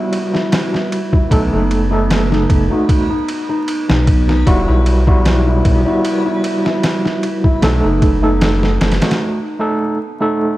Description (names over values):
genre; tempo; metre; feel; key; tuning
trip hop; 76 BPM; 4/4; swing 54% on 16ths; E harmonic minor; A4 = 435 Hz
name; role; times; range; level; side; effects
overdriven tine electric piano; accompaniment; 0.0-10.6 s; G3 to A4; -17 LUFS; right 1 dB; medium tremolo, tape echo
felt-muted upright piano; arpeggios; 0.0-10.6 s; D#4 to E4; -22 LUFS; left 2 dB; tape echo
backwards swelling texture; texture; 0.0-9.2 s; B3 to B4; -27 LUFS; right 3 dB; built-in reverb
trip hop sampler-style drum kit; drums; 0.1-9.2 s; kick drum, ride cymbal, snare drum; -17 LUFS; equal; overdrive, studio reverb
dark detuned saw bass; bass; 1.3-9.0 s; E1 to B1; -15 LUFS; equal; none
room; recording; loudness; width
digital ambience; dark, warm production, vinyl crackle; -12 LUFS; side -16 dB against mid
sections
0.0-10.6 A section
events
break 9.2-10.6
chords
0.0 Emadd9; 1.3 B7; 4.5 Emadd9; 7.6 B7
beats
0.52 | 1.31 2.10 2.89 3.68 | 4.47 5.26 6.05 6.84 | 7.63 8.41 9.21 9.99